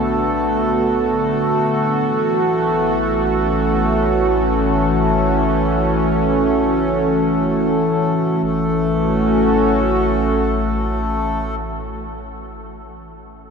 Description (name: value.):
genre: ambient.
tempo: free time.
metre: none.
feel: none.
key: A major.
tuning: A4 = 440 Hz.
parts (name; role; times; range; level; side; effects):
warm analog pad; sustained chords; 0.0-12.0 s; D3 to A4; -17 LUFS; right 1 dB; chorus.
deep rumbling drone; bass; 0.0-10.8 s; A1 to B1; -26 LUFS; equal; built-in reverb.
hand-pumped harmonium; drone; 0.0-11.6 s; A3; -23 LUFS; left 3 dB; none.
room: wet huge ambient reverb, RT60 7.7 s.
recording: none.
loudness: -15 LUFS.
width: side -6 dB against mid.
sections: 0.0-8.4 A section; 8.4-11.6 B section.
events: none.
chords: 0.0 Bm7; 2.0 A6.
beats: free time.